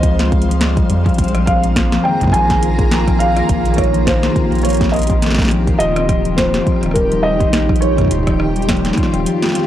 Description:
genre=IDM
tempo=104 BPM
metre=4/4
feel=swing 56% on 16ths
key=unclear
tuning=A4 = 440 Hz
part: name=felt-muted upright piano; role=melody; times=0.0-9.7 s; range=Bb4 to Ab5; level=-20 LUFS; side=right 1 dB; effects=analog delay
part: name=granular cloud pad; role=sustained chords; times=0.0-9.7 s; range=Ab3 to Bb5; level=-21 LUFS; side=right 1 dB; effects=built-in reverb
part: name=concert harp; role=arpeggios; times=0.0-9.7 s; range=F2 to F4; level=-19 LUFS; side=left 4 dB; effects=vintage 12-bit sampler grit, tape echo
part: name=round analog bass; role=bass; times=0.0-9.3 s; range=Eb1 to F2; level=-19 LUFS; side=equal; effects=none
part: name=booming analog drum machine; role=drums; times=0.0-9.7 s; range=hi-hat, rim click, snare drum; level=-21 LUFS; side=equal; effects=overdrive
part: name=electronic kick drum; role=drums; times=0.0-9.1 s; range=none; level=-18 LUFS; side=equal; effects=none
room=light reverb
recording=dry, gritty hardware recording, transformer saturation, cassette tape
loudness=-12 LUFS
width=side -12 dB against mid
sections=0.0-9.7 A section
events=none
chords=0.0 Dbmaj7; 1.2 Bb5; 5.8 Eb7

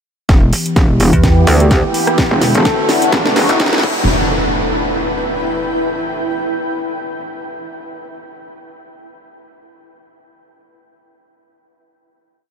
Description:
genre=bass house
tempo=127 BPM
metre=4/4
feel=swing 56% on 16ths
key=E minor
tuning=A4 = 440 Hz
part: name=sweeping resonant pad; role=sustained chords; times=0.6-4.1 s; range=D3 to G4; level=-20 LUFS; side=equal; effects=chorus, sidechain pumping
part: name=metallic wobble bass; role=bass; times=0.3-4.1 s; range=E1 to D2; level=-14 LUFS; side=equal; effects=chorus, overdrive, sidechain pumping
part: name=electronic kick drum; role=drums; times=0.3-3.9 s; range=none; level=-14 LUFS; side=equal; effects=none
part: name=house drum kit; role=drums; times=0.3-3.9 s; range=crash cymbal, hi-hat, rim click, snare drum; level=-20 LUFS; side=right 1 dB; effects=none
part: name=riser and impact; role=sound effects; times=1.8-5.7 s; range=none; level=-23 LUFS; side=equal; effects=none
part: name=granular cloud pad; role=texture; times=1.4-5.9 s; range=D4 to G5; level=-21 LUFS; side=equal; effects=built-in reverb, sidechain pumping
part: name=metallic FM bass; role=bass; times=1.1-3.6 s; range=E1 to E2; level=-12 LUFS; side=equal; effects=tube saturation, sidechain pumping
part: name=breathy flute-like synth lead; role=melody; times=1.6-2.9 s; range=G4 to A4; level=-24 LUFS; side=left 1 dB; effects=none
room=moderate huge ambient reverb, RT60 9.0 s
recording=dreamy mix soaked in reverb, high-pass filter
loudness=-12 LUFS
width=side -7 dB against mid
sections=0.3-4.1 build; 4.1-6.0 final note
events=build-up 0.3-4.1; drum fill 0.3-4.1; filter sweep 0.3-4.1; riser 1.8-4.1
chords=0.3 Em; 2.2 D/E; 3.8 Em

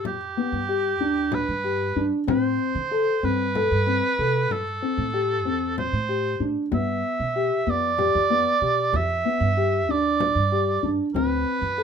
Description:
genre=contemporary instrumental, chamber music in an uneven meter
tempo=189 BPM (eighths)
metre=7/8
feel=straight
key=G mixolydian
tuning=A4 = 439 Hz
part: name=clear oboe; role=melody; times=0.0-11.8 s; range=G4 to E5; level=-24 LUFS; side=right 4 dB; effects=none
part: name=felt-muted upright piano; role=arpeggios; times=0.0-11.8 s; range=B3 to A4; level=-25 LUFS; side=left 4 dB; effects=none
part: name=upright bass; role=bass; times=0.0-11.8 s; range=D2 to D3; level=-28 LUFS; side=right 2 dB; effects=none
part: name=frame drum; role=percussion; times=0.1-11.4 s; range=none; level=-32 LUFS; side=left 7 dB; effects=none
room=moderate studio reverb, RT60 0.6 s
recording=none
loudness=-21 LUFS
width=side -7 dB against mid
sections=0.0-11.8 A section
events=none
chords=0.0 G7; 2.3 Am7; 6.7 G7; 11.1 D7

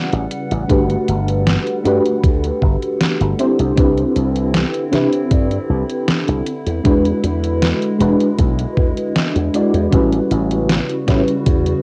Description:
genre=vaporwave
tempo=78 BPM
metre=4/4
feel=straight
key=unclear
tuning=A4 = 440 Hz
part: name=mellow FM electric piano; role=accompaniment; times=0.0-11.8 s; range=G3 to D5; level=-20 LUFS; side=equal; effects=ensemble chorus, cassette tape, tape echo
part: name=warbly tape-like pad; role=sustained chords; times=0.0-11.8 s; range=C#3 to F#5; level=-29 LUFS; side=equal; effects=chorus, built-in reverb, phaser, cassette tape
part: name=slap bass with an envelope filter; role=bass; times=0.1-11.7 s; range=E1 to C3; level=-21 LUFS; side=equal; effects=none
part: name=detuned 8-bit digital drum machine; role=drums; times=0.1-11.8 s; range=hi-hat, snare drum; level=-22 LUFS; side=equal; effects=overdrive, studio reverb, cassette tape
part: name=electronic kick drum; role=drums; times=0.7-11.6 s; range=none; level=-18 LUFS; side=equal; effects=overdrive, studio reverb, cassette tape
room=moderate small room reverb, RT60 0.5 s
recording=home recording on cassette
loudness=-17 LUFS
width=mono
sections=0.0-11.8 A section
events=none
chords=0.0 A13; 0.7 Gmaj7; 3.4 Cmaj9; 6.5 E7; 9.9 A13

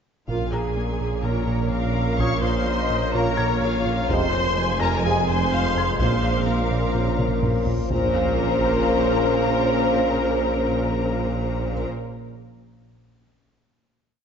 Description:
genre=cinematic, hybrid orchestral and electronic film score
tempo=126 BPM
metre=4/4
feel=straight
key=Bb minor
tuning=A4 = 440 Hz
part: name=rich chamber violin section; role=melody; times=0.3-11.9 s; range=F5 to Db6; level=-30 LUFS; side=left 6 dB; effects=none
part: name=clear symphonic viola section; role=accompaniment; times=0.3-11.9 s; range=F4 to Db5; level=-30 LUFS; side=equal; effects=none
part: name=analog drone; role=sustained chords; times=0.7-11.9 s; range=Ab3 to C5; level=-28 LUFS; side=left 1 dB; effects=chorus
part: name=mellow French horn section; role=sustained chords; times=0.3-11.9 s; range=C4 to C5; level=-30 LUFS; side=left 3 dB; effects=none
part: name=warm trombone section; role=sustained chords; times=0.3-11.9 s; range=Bb2 to Bb3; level=-31 LUFS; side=right 4 dB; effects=none
part: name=round analog bass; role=riff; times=0.3-7.8 s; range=F2 to Bb3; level=-29 LUFS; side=right 2 dB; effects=none
part: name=mellow tuba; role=bass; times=0.3-11.9 s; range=F1 to Bb1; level=-30 LUFS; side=right 3 dB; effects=none
part: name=rich symphonic cello section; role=bass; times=0.3-11.9 s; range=F2 to Bb2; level=-30 LUFS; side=right 2 dB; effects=none
part: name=rich symphonic double bass section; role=bass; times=0.3-11.9 s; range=F1 to Bb1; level=-33 LUFS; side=right 3 dB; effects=none
part: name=warm sub bass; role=bass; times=0.3-11.9 s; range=F1 to Bb1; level=-31 LUFS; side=equal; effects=none
part: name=taiko ensemble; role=drums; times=0.3-8.0 s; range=none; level=-30 LUFS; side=equal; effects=none
part: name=felt-muted upright piano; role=texture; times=0.5-7.9 s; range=Bb5 to Bb6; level=-37 LUFS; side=left 2 dB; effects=ping-pong delay
part: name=warm symphonic violin section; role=second line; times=1.2-11.9 s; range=Db4 to Ab5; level=-29 LUFS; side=left 2 dB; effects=none
part: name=reverse cymbal and sub drop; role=sound effects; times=7.8-9.8 s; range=none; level=-33 LUFS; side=equal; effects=none
room=wet scoring stage reverb, RT60 1.7 s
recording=nothing above 7.6 kHz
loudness=-20 LUFS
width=side -7 dB against mid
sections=0.3-7.9 theme; 7.9-11.7 final chord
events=drum fill 7.2-7.9; reverse cymbal 7.8; impact 7.9-9.8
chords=0.3 Bbm; 4.1 Fm; 6.0 Bbmadd9

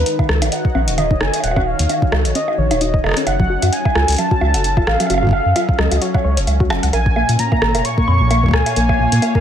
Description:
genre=IDM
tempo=131 BPM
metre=4/4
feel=swing 56% on 16ths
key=Eb minor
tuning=A4 = 440 Hz
part: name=warm velvety synth lead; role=melody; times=0.0-9.4 s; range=Cb5 to Db6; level=-21 LUFS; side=equal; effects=chorus, cassette tape, ping-pong delay
part: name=hollow soft pad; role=sustained chords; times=0.0-9.4 s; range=Bb2 to Bb5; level=-24 LUFS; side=left 1 dB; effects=ensemble chorus
part: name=soft round pluck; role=arpeggios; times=0.0-9.4 s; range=Bb2 to Gb5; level=-23 LUFS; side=left 2 dB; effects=chorus, ping-pong delay
part: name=round analog bass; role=bass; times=0.0-9.2 s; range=Eb1 to Bb2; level=-18 LUFS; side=equal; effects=none
part: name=electro analog drum machine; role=drums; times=0.1-9.3 s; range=bongos, hi-hat, rim click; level=-21 LUFS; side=right 2 dB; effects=none
part: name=electronic kick drum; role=drums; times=0.2-9.4 s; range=none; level=-16 LUFS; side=equal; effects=overdrive
room=light reverb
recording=none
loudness=-14 LUFS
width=side -9 dB against mid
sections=0.0-9.4 A section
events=none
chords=0.0 Ebm7; 3.3 Gbm; 6.9 Bbm7

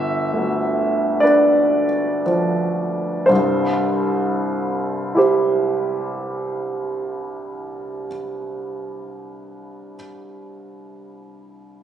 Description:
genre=classical, romantic nocturne for solo piano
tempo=32 BPM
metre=4/4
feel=rubato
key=C major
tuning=A4 = 440 Hz
part: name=clear grand piano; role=solo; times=0.0-11.8 s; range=G1 to E5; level=-18 LUFS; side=right 1 dB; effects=none
room=moderate concert hall reverb, RT60 1.9 s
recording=recorded on a phone in the room, studio ambience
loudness=-18 LUFS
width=side -9 dB against mid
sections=0.0-3.3 A section; 3.3-10.7 B section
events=slowing down 0.0-3.3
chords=0.0 G7; 3.3 C

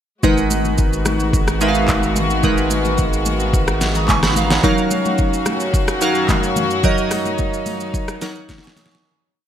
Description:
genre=amapiano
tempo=109 BPM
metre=4/4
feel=straight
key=Eb minor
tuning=A4 = 445 Hz
part: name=glassy digital keys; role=accompaniment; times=0.2-9.2 s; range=Gb3 to Eb6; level=-19 LUFS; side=right 2 dB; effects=chorus
part: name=warm studio string section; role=sustained chords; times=0.2-9.0 s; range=Gb2 to Gb4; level=-23 LUFS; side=left 2 dB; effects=sidechain pumping
part: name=saturated sub bass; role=bass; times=0.2-4.6 s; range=Ab1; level=-22 LUFS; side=equal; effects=none
part: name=deep house drum kit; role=drums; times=0.2-9.1 s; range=handclaps, hi-hat, kick drum, rim click, shaker, snare drum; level=-20 LUFS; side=equal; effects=gated reverb
part: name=congas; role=percussion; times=0.2-8.9 s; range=none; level=-27 LUFS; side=left 3 dB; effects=none
room=moderate lush hall reverb, RT60 2.4 s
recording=bright 1980s-style digital production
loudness=-15 LUFS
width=side -10 dB against mid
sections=0.2-9.0 groove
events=fade-out 6.8-9.0; drum fill 8.5-9.0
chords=0.2 Abm9; 4.6 Ebm9/Gb

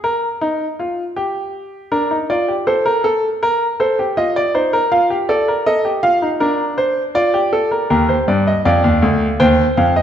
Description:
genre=classical, baroque-style 4-part fugue for grand piano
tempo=80 BPM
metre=4/4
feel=straight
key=unclear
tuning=A4 = 441 Hz
part: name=clear grand piano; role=solo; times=0.0-10.0 s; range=D2 to G5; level=-14 LUFS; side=equal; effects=none
room=wet recital hall reverb, RT60 1.4 s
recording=dark, warm production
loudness=-14 LUFS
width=side -9 dB against mid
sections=0.0-10.0 A section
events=none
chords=0.0 N.C.; 1.9 Bb/D; 3.4 Cm7; 4.9 F7; 6.4 Bb/D; 7.9 Eb; 9.4 F7(no3)/Eb

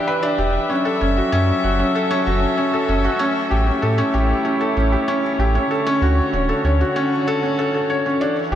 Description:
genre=piano and strings electronica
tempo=96 BPM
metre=4/4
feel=straight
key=unclear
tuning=A4 = 440 Hz
part: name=muted string quartet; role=sustained chords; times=0.0-8.6 s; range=D3 to E5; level=-23 LUFS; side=left 1 dB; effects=none
part: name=felt-muted upright piano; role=riff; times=0.0-8.6 s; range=C#4 to C#5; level=-19 LUFS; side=equal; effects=diffuse ambient delay
part: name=warm sub bass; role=bass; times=0.4-8.6 s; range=D1 to A2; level=-19 LUFS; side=right 1 dB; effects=tube saturation
room=wet huge ambient reverb, RT60 8.3 s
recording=dreamy mix soaked in reverb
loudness=-16 LUFS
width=side -10 dB against mid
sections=0.0-8.6 A section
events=none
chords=0.0 Em7; 0.7 F#m7; 3.2 A7; 5.7 Dmaj7

